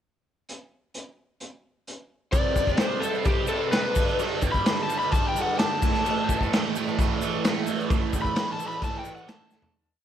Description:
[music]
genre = garage rock duo or trio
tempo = 129 BPM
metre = 4/4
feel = straight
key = unclear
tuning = A4 = 440 Hz
[part]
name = raw garage drum kit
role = drums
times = 0.5-9.7 s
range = crash cymbal, hi-hat, kick drum, snare drum, toms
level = -26 LUFS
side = left 1 dB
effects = vintage 12-bit sampler grit
[part]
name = overdriven slide guitar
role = melody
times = 2.3-9.7 s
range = G4 to B5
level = -28 LUFS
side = left 3 dB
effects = none
[part]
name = biting overdriven guitar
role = riff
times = 2.3-9.7 s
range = G2 to C4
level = -29 LUFS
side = right 10 dB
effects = phaser
[part]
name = egg shaker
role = percussion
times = 2.3-9.6 s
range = none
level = -46 LUFS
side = left 13 dB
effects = none
[sound]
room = moderate echo chamber reverb, RT60 1.8 s, small room ambience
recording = 1960s-style stereo with parts hard left and right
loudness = -22 LUFS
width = side -10 dB against mid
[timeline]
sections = 0.5-2.3 pickup bar; 2.3-9.7 pre-chorus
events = fade-out 7.9-9.7; drum fill 9.5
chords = 0.5 N.C.; 2.3 C5; 4.0 G5; 5.8 A5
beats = | 0.47 0.94 1.40 1.87 | 2.33 2.80 3.27 3.73 | 4.20 4.66 5.13 5.59 | 6.05 6.52 6.98 7.44 | 7.90 8.36 8.82 9.28

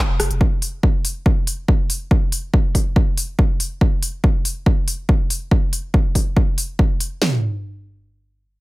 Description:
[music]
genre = driving peak-time techno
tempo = 141 BPM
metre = 4/4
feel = straight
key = none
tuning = none
[part]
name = techno drum kit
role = drums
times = 0.2-7.1 s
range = hi-hat, rim click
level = -22 LUFS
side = left 1 dB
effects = none
[part]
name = techno drum kit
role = drums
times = 0.4-7.3 s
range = kick drum, snare drum, toms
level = -16 LUFS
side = equal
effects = none
[sound]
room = little or no reverb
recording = faint mains hum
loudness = -16 LUFS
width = side -20 dB against mid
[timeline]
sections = 0.0-7.2 A section; 7.2-8.6 B section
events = none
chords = none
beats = | 0.41 0.83 1.26 1.68 | 2.11 2.54 2.96 3.39 | 3.81 4.24 4.66 5.09 | 5.51 5.94 6.37 6.79 | 7.22

